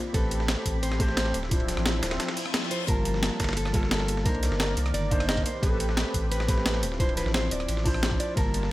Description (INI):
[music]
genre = liquid drum and bass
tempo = 175 BPM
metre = 4/4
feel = straight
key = unclear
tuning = A4 = 440 Hz
[part]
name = mellow electric guitar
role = melody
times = 0.0-8.7 s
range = G4 to Eb5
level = -34 LUFS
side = equal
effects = tape echo
[part]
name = warm analog pad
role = sustained chords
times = 0.0-8.7 s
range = Eb3 to B5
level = -35 LUFS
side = left 1 dB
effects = chorus, sidechain pumping
[part]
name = warm grand piano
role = accompaniment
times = 0.1-8.7 s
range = F3 to A5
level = -33 LUFS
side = equal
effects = tape echo
[part]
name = saturated sub bass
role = bass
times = 0.1-8.7 s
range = D1 to C2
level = -29 LUFS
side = equal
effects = none
[part]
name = breakbeat sampler-style drum kit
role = drums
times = 0.1-8.6 s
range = hi-hat, rim click, snare drum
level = -30 LUFS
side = equal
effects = studio reverb
[part]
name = dusty soul sampler-style drum kit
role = drums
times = 0.1-8.7 s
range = hi-hat, ride cymbal, snare drum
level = -35 LUFS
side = right 1 dB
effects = high-pass filter on cymbals, studio reverb, high-pass filter on snare, high-pass filter on hats
[part]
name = electronic kick drum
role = drums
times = 0.1-8.4 s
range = none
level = -28 LUFS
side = equal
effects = studio reverb
[part]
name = reverse cymbal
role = sound effects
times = 2.3-2.9 s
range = none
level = -36 LUFS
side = left 6 dB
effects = none
[sound]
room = digital ambience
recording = none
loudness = -24 LUFS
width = side -17 dB against mid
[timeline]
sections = 0.0-8.7 A section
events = break 2.2-2.9; reverse cymbal 2.3-2.9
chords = 0.0 Am9; 1.3 Dm9; 2.9 Gm9; 4.3 Cm9; 5.5 Am9; 6.8 Dm9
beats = | 0.14 0.48 0.83 1.17 | 1.51 1.86 2.20 2.54 | 2.88 3.23 3.57 3.91 | 4.26 4.60 4.94 5.29 | 5.63 5.97 6.31 6.66 | 7.00 7.34 7.68 8.03 | 8.37 8.71